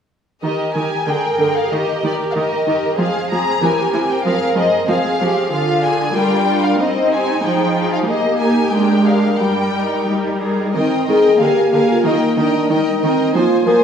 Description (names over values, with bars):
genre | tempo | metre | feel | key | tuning
quick classical-period movement for symphony orchestra | 93 BPM | 2/4 | rubato | Eb major | A4 = 443 Hz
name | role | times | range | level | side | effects
warm symphonic violin section | melody | 0.4-13.8 s | D5 to Bb5 | -21 LUFS | left 3 dB | none
rich studio violin section | second line | 0.4-13.8 s | C4 to F5 | -21 LUFS | left 2 dB | none
warm studio viola section | accompaniment | 0.4-13.7 s | D3 to C4 | -19 LUFS | right 1 dB | none
dark chamber cello section | bass | 1.1-13.8 s | G3 to Bb4 | -22 LUFS | right 4 dB | none
dark French horn section | sustained chords | 10.8-13.8 s | D4 to Bb4 | -14 LUFS | left 1 dB | none
room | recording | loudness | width
wet recital hall reverb, RT60 1.4 s | heard from further back in the room | -14 LUFS | side -7 dB against mid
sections
0.4-10.8 A section; 10.8-13.8 A section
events
none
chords
0.4 Eb; 1.1 Bb7; 1.7 Eb; 3.0 Fm; 3.6 C7; 4.3 Fm; 5.5 Ddim; 6.2 Gm7; 6.8 Cm; 7.4 Fm7; 8.1 Eb/Bb; 8.7 Bb7/Ab; 9.4 Eb/G; 10.8 Eb; 11.4 Bb7; 12.1 Eb